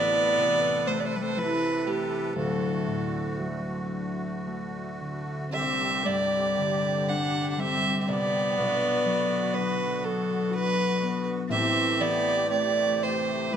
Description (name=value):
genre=celtic folk, Celtic slow air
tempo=56-63 BPM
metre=3/4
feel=rubato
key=unclear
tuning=A4 = 440 Hz
part: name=dark fiddle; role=melody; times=0.0-13.6 s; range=G4 to F#5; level=-26 LUFS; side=right 2 dB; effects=none
part: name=warm cello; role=second line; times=0.0-13.6 s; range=E3 to D4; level=-31 LUFS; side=left 6 dB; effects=slapback echo
part: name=concert harp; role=accompaniment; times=0.0-13.6 s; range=D1 to F#4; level=-31 LUFS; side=equal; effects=none
part: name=musette accordion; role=sustained chords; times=0.0-13.6 s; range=C3 to B4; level=-35 LUFS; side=equal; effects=none
room=light reverb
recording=close, detailed microphones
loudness=-24 LUFS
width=side -8 dB against mid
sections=0.0-13.6 A section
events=none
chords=0.0 Amadd9; 2.4 D; 5.5 Csus2; 8.6 Bm; 11.5 Am7